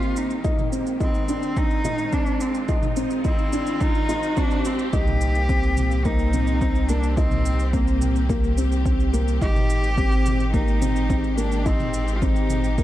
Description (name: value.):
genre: piano and strings electronica.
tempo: 107 BPM.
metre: 4/4.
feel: straight.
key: C minor.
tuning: A4 = 440 Hz.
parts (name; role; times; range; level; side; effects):
rich cello; melody; 0.0-12.8 s; Bb3 to G4; -28 LUFS; equal; digital delay.
clear symphonic string section; sustained chords; 0.0-12.8 s; Eb3 to G4; -34 LUFS; left 1 dB; none.
dark upright piano; riff; 0.0-12.8 s; Bb3 to Eb4; -26 LUFS; left 1 dB; digital delay.
electronic shaker and toms; drums; 0.0-12.8 s; none; -34 LUFS; equal; none.
riser; sound effects; 0.2-4.9 s; none; -35 LUFS; equal; none.
electronic kick drum; drums; 0.4-12.8 s; none; -24 LUFS; equal; overdrive.
round analog bass; bass; 4.9-12.8 s; Ab1 to C2; -23 LUFS; equal; sidechain pumping.
room: light reverb, small room ambience.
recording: dark, warm production.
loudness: -19 LUFS.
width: side -14 dB against mid.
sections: 0.0-4.9 A section; 4.9-12.8 B section.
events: build-up 0.0-4.9; filter sweep on string section 0.0-4.9; riser 0.2-4.9; drop 4.9-12.8.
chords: 0.4 Fm7; 4.9 Cm7; 9.4 Abmaj7.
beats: | 0.45 1.01 1.57 2.13 | 2.69 3.25 3.81 4.37 | 4.93 5.49 6.05 6.61 | 7.17 7.74 8.30 8.86 | 9.42 9.98 10.54 11.10 | 11.66 12.22 12.78.